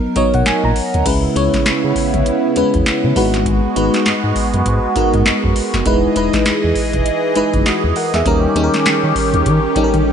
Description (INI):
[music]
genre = R&B, new jack swing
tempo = 100 BPM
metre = 4/4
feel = swing 60% on 16ths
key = G# minor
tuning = A4 = 440 Hz
[part]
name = FM electric piano with soft pad layer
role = accompaniment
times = 0.0-10.1 s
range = F#3 to A#5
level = -17 LUFS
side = left 1 dB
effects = chorus, tremolo
[part]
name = smooth gliding synth bass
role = bass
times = 0.2-10.0 s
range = E1 to D#3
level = -19 LUFS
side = equal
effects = none
[part]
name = booming analog drum machine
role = drums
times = 0.2-10.1 s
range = crash cymbal, handclaps, hi-hat, kick drum, snare drum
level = -19 LUFS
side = equal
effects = overdrive
[part]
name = phased analog pad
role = sustained chords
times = 1.1-10.1 s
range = C#3 to D#5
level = -18 LUFS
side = right 2 dB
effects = phaser, chorus
[sound]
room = light reverb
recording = nothing above 10.7 kHz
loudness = -13 LUFS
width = side -8 dB against mid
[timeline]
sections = 0.0-1.1 A section; 1.1-10.1 B section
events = FM electric piano fill 0.0-1.1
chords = 0.0 Bmaj7; 1.1 C#m7; 3.2 G#m7; 5.9 Emaj7; 8.3 D#7